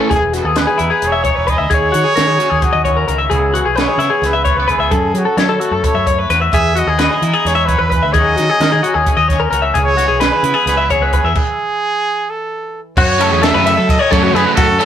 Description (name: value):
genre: math rock and midwest emo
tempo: 261 BPM (eighths)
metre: 7/8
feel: straight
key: unclear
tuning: A4 = 440 Hz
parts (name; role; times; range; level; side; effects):
- twangy electric guitar; accompaniment; 0.0-13.0 s; F#2 to G#4; -24 LUFS; right 2 dB; none
- twelve-string electric guitar; arpeggios; 0.0-14.8 s; E4 to E5; -15 LUFS; left 4 dB; spring reverb
- crunchy overdriven guitar; riff; 0.0-0.1, 13.2-14.8 s; C#3 to A4; -16 LUFS; right 2 dB; none
- clear trumpet; melody; 0.1-14.8 s; F#4 to E5; -17 LUFS; right 2 dB; none
- modern bright fingered electric bass; bass; 0.1-14.8 s; E1 to F#3; -19 LUFS; equal; none
- compact cocktail drum kit; drums; 0.1-14.8 s; crash cymbal, hi-hat, kick drum, ride cymbal, snare drum; -19 LUFS; right 1 dB; none
room: light reverb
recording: rough rehearsal-room recording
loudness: -12 LUFS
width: side -9 dB against mid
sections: 0.1-13.0 A section; 13.0-14.8 B section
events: stop 11.4-13.0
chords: 0.1 Emaj7; 1.7 D#m7; 3.3 C#m7; 4.9 F#m7; 6.5 Emaj7; 8.1 D#m7; 9.8 C#m7; 11.4 N.C.; 13.0 F#m7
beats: | 0.11 0.34 0.57 0.80 1.02 1.25 1.48 | 1.71 1.94 2.17 2.40 2.63 2.86 3.09 | 3.32 3.55 3.78 4.01 4.24 4.47 4.70 | 4.93 5.16 5.39 5.62 5.85 6.08 6.31 | 6.54 6.77 7.00 7.23 7.46 7.69 7.92 | 8.15 8.38 8.61 8.84 9.07 9.30 9.53 | 9.76 9.99 10.22 10.45 10.68 10.91 11.14 | 11.37 11.60 11.83 12.05 12.28 12.51 12.74 | 12.97 13.20 13.43 13.65 13.88 14.11 14.34 | 14.57 14.79